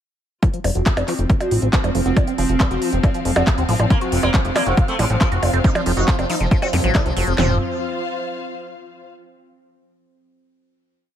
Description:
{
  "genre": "psychedelic trance",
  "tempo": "138 BPM",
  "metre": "4/4",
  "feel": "straight",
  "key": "unclear",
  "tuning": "A4 = 440 Hz",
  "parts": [
    { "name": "pulsing gated texture", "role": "sustained chords", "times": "0.8-7.4 s", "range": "F3 to C4", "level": "-26 LUFS", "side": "right 2 dB", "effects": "chorus, built-in reverb, sidechain pumping" },
    { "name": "liquid acid bass", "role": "riff", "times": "0.4-7.6 s", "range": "F3 to Gb4", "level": "-25 LUFS", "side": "moving between left 4 dB and right 3 dB", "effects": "phaser, auto-pan, sidechain pumping, tape echo" },
    { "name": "techno drum kit", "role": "drums", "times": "0.4-7.5 s", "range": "handclaps, kick drum, snare drum, toms", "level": "-17 LUFS", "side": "equal", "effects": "none" },
    { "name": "techno drum kit", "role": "drums", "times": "0.4-7.4 s", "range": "handclaps, hi-hat, percussion blips", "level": "-24 LUFS", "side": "equal", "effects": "none" },
    { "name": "dark symphonic string section", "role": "texture", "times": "0.4-9.1 s", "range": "F4 to F5", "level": "-31 LUFS", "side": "left 4 dB", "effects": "sidechain pumping" },
    { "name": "fat analog bass", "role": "bass", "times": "0.6-7.6 s", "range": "Eb1 to F2", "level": "-20 LUFS", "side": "equal", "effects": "none" },
    { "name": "sitar", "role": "melody", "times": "3.9-7.5 s", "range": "C3 to Eb4", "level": "-26 LUFS", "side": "right 1 dB", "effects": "phaser, vintage 12-bit sampler grit, sidechain pumping, ping-pong delay" },
    { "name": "zap", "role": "sound effects", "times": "6.7-6.8 s", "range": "none", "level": "-27 LUFS", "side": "equal", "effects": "none" }
  ],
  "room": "light reverb",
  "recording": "none",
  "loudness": "-16 LUFS",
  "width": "side -10 dB against mid",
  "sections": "0.4-7.4 groove; 7.4-9.1 final chord",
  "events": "fade-in on string section 0.4-7.4; filter sweep on acid bass 0.4-7.4",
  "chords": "0.4 F5",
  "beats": "| 0.43 0.86 1.30 1.73 | 2.17 2.60 3.04 3.47 | 3.90 4.34 4.77 5.21 | 5.64 6.08 6.51 6.95 | 7.38 7.82 8.25 8.69"
}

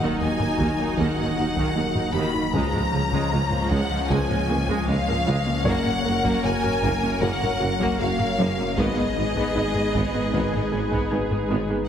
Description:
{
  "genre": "cinematic, hybrid orchestral and electronic film score",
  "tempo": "77 BPM",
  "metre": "4/4",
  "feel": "straight",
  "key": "unclear",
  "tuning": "A4 = 440 Hz",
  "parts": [
    { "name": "warm symphonic violin section", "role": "melody", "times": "0.0-11.1 s", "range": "Eb5 to Cb6", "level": "-30 LUFS", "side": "left 4 dB", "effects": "none" },
    { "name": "rich symphonic violin section", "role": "second line", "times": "0.0-11.1 s", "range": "Eb5 to Cb6", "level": "-32 LUFS", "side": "left 3 dB", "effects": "none" },
    { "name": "rich symphonic viola section", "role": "accompaniment", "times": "0.0-11.8 s", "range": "Eb3 to Bb4", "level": "-29 LUFS", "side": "right 1 dB", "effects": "none" },
    { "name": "warm analog pad", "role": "sustained chords", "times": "0.0-11.9 s", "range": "F3 to Db5", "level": "-29 LUFS", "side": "left 1 dB", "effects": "chorus" },
    { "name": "warbly dusty pluck", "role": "arpeggios", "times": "0.0-11.8 s", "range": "Db3 to Ab4", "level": "-30 LUFS", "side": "left 1 dB", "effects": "chorus, tape echo" },
    { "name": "pure sine sub bass", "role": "bass", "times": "0.0-11.9 s", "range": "Eb1 to Db2", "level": "-34 LUFS", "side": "equal", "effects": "none" },
    { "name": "rich chamber cello section", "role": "bass", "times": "0.0-11.8 s", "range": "Db2 to Ab2", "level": "-31 LUFS", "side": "right 3 dB", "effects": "none" },
    { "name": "impact", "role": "sound effects", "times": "0.0-2.5 s", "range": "none", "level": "barely audible", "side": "none", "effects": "none" },
    { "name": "mellow tuba", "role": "bass", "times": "0.2-11.6 s", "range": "Gb1 to Eb2", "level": "-30 LUFS", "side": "right 2 dB", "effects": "none" },
    { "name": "rich symphonic double bass section", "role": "bass", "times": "0.2-11.6 s", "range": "Gb1 to Eb2", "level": "-32 LUFS", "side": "right 2 dB", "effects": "none" },
    { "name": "taiko ensemble", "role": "drums", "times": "0.4-11.7 s", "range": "none", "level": "-32 LUFS", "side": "equal", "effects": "none" },
    { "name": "mellow French horn section", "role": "sustained chords", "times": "1.0-10.6 s", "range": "Db3 to Cb5", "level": "-35 LUFS", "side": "left 3 dB", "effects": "none" },
    { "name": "felt-muted upright piano", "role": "texture", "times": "1.0-11.9 s", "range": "Cb4 to Ab5", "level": "-37 LUFS", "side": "left 2 dB", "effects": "none" }
  ],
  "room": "wet concert hall reverb, RT60 2.3 s",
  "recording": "heavily compressed radio sound",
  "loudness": "-20 LUFS",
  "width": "side -9 dB against mid",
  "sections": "0.0-11.9 A section",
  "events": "impact 0.0-2.5",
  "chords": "0.0 Ebm; 2.5 Db6; 5.7 Gb; 8.8 Abm",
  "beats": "0.20 0.98 1.76 | 2.54 3.32 4.10 4.88 | 5.66 6.44 7.22 8.00 | 8.78 9.55 10.33 11.11"
}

